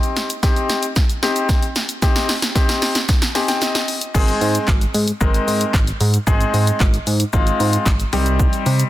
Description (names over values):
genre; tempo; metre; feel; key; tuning
dance-pop; 113 BPM; 4/4; straight; unclear; A4 = 445 Hz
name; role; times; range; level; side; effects
bright concert grand piano; accompaniment; 0.0-8.9 s; G3 to Ab5; -21 LUFS; left 2 dB; sidechain pumping, low-pass filter
punchy analog drum machine; drums; 0.0-8.9 s; crash cymbal, handclaps, hi-hat, kick drum, shaker, snare drum; -18 LUFS; equal; none
chorused synth bass; bass; 4.1-8.8 s; Ab1 to C3; -18 LUFS; equal; sidechain pumping
room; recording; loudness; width
light reverb, digital ambience; dense, heavily limited modern master; -15 LUFS; side -14 dB against mid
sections
0.0-4.1 A section; 4.1-8.9 B section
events
build-up 0.0-4.1; drum fill 0.0-4.1; grand piano fill 3.1-4.1; drop 4.1-8.9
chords
0.0 Cm; 4.1 Ab; 8.1 Cm